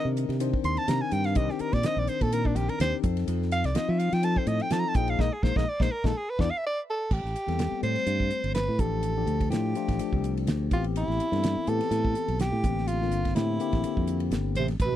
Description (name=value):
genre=electric jazz fusion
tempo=125 BPM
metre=4/4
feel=swing 54% on 16ths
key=C minor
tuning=A4 = 441 Hz
part: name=breathy soprano saxophone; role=melody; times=0.0-15.0 s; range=D4 to C6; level=-30 LUFS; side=right 2 dB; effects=none
part: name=bright tine electric piano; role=accompaniment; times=0.0-14.7 s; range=D3 to C5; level=-32 LUFS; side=left 14 dB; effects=none
part: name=modern bright fingered electric bass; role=bass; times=0.1-15.0 s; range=G1 to F3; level=-28 LUFS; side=right 1 dB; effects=none
part: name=damped 70s drum kit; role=drums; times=0.2-14.9 s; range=crash cymbal, hi-hat, kick drum, ride cymbal, snare drum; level=-29 LUFS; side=right 1 dB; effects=none
part: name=mellow bass clarinet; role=second line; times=14.6-15.0 s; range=B2 to C3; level=-30 LUFS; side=right 11 dB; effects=none
room=little or no reverb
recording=dry, close 1970s-style studio recording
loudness=-24 LUFS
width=side -12 dB against mid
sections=0.0-7.1 A section; 7.1-15.0 B section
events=soprano saxophone solo 0.0-7.1; band accent 5.2-7.1; drum fill 6.6-7.1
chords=0.0 Cm9; 3.0 F7; 5.0 Bb7sus4; 6.2 E5; 7.1 Am9; 8.8 F69/A; 10.7 Cmaj7/A; 12.6 Bb69